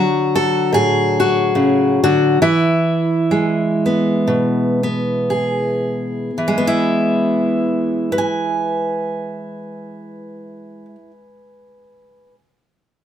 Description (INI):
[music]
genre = folk, solo fingerstyle acoustic guitar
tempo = 54-74 BPM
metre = 4/4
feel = swing 56% on 8ths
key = E mixolydian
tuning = A4 = 439 Hz
[part]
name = fingerpicked steel-string acoustic guitar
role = solo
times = 0.0-12.4 s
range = A2 to G#5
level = -15 LUFS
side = equal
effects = none
[sound]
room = moderate studio reverb, RT60 0.7 s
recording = none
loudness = -15 LUFS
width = side -9 dB against mid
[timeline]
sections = 0.0-6.4 A section; 6.4-10.8 B section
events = slowing down 0.0-6.4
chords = 0.0 D; 2.4 E